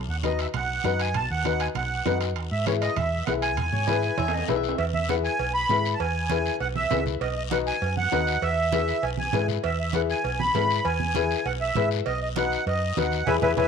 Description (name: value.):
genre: latin, cumbia.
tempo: 198 BPM.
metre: 4/4.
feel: straight.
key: E major.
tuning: A4 = 440 Hz.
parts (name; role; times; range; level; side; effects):
hollow-body short-scale fingered electric bass; bass; 0.0-13.7 s; B1 to G#2; -29 LUFS; right 1 dB; none.
accordion; melody; 0.1-13.7 s; B4 to B5; -27 LUFS; right 2 dB; light tremolo tuning.
dark upright piano; accompaniment; 0.2-13.7 s; D#4 to B4; -28 LUFS; left 12 dB; none.
congas; percussion; 0.2-13.6 s; none; -34 LUFS; right 10 dB; none.
guiro; percussion; 0.2-13.6 s; none; -38 LUFS; left 14 dB; none.
timbales and cowbell; percussion; 0.2-13.6 s; none; -34 LUFS; right 15 dB; none.
bright clarinet; second line; 3.7-4.8 s; B4 to E5; -34 LUFS; left 10 dB; none.
room: light reverb, small room ambience.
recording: 1960s-style stereo with parts hard left and right.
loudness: -23 LUFS.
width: side -6 dB against mid.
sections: 0.0-4.8 A section; 4.8-13.7 B section.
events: drum fill 3.9-4.8; band accent 13.3-13.7.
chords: 0.0 B; 2.4 E; 7.2 B; 8.4 E; 12.1 B.